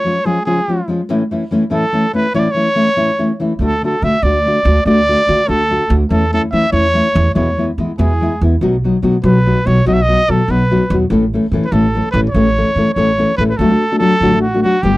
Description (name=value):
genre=mexican folk, mariachi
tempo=96 BPM (dotted quarters)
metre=6/8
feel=straight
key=A major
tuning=A4 = 441 Hz
part: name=clear trumpet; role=melody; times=0.0-15.0 s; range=F#4 to E5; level=-16 LUFS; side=right 1 dB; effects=none
part: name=nylon-string guitar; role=accompaniment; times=0.0-15.0 s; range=E2 to A4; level=-15 LUFS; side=left 2 dB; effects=none
part: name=upright bass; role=bass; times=3.6-15.0 s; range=G1 to E3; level=-16 LUFS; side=right 1 dB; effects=none
room=light reverb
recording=dry, close 1970s-style studio recording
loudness=-12 LUFS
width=side -18 dB against mid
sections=0.0-13.6 A section; 13.6-15.0 B section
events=none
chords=0.0 C#; 1.1 A; 3.6 D; 6.1 A/E; 7.4 E; 8.6 B; 11.1 A; 13.6 D